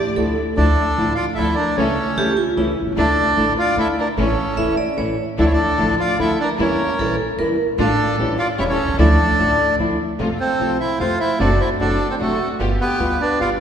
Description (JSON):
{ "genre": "tango", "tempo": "150 BPM", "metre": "3/4", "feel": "rubato", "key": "D harmonic minor, F major from 10.2 s", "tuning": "A4 = 441 Hz", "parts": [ { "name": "dark violin", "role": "second line", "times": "0.0-13.5 s", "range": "F#4 to D5", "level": "-27 LUFS", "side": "left 2 dB", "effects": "none" }, { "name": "vibraphone with medium hard mallets", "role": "second line", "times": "0.0-7.7 s", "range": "E4 to E5", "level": "-24 LUFS", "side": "right 3 dB", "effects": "none" }, { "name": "warm studio string section", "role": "stabs", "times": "0.0-13.6 s", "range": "F3 to G4", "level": "-27 LUFS", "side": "right 2 dB", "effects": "none" }, { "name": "upright bass", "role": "bass", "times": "0.0-13.6 s", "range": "E1 to F2", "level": "-23 LUFS", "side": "right 1 dB", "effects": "none" }, { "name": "nylon-string guitar", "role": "accompaniment", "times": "0.2-13.6 s", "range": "C3 to F#4", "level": "-22 LUFS", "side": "left 2 dB", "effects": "none" }, { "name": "bandoneon", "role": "melody", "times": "0.6-13.5 s", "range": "A3 to F5", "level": "-20 LUFS", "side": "right 1 dB", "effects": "none" } ], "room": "wet concert hall reverb, RT60 2.3 s", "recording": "recorded in a church or concert hall", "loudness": "-16 LUFS", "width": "side -8 dB against mid", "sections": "0.6-10.2 A section; 10.2-13.6 B section", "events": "none", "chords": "0.0 Dmadd9; 1.8 A/C#; 3.0 Dsus2; 4.2 A; 5.4 Dmadd9; 6.6 Edim; 7.8 Dm/A; 8.2 A7; 9.0 Dmadd9; 10.2 F; 11.4 D7/F#; 12.6 G7" }